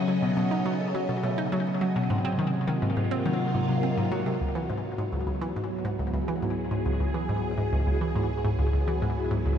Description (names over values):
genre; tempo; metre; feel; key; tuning
ambient, sequencer-driven space music; 104 BPM; 4/4; straight; C# minor from 4.4 s; A4 = 441 Hz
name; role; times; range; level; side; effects
phased string machine; sustained chords; 0.0-9.6 s; B#2 to D#5; -30 LUFS; equal; ensemble chorus, phaser
concert harp; arpeggios; 0.0-9.6 s; F#3 to C#5; -32 LUFS; equal; auto-pan, ping-pong delay
hollow square pluck; riff; 0.1-9.6 s; C#2 to D#4; -28 LUFS; equal; chorus, phaser, ping-pong delay
round analog bass; bass; 4.4-9.6 s; C#2; -35 LUFS; right 1 dB; none
room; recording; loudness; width
moderate huge ambient reverb, RT60 7.5 s; none; -25 LUFS; side -8 dB against mid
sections
0.0-4.4 A section; 4.4-9.6 B section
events
none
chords
0.0 B7; 2.1 G#7; 4.4 C#m7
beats
0.37 0.94 1.52 | 2.10 2.68 3.25 3.83 | 4.41 4.98 5.56 6.14 | 6.71 7.29 7.87 8.45 | 9.02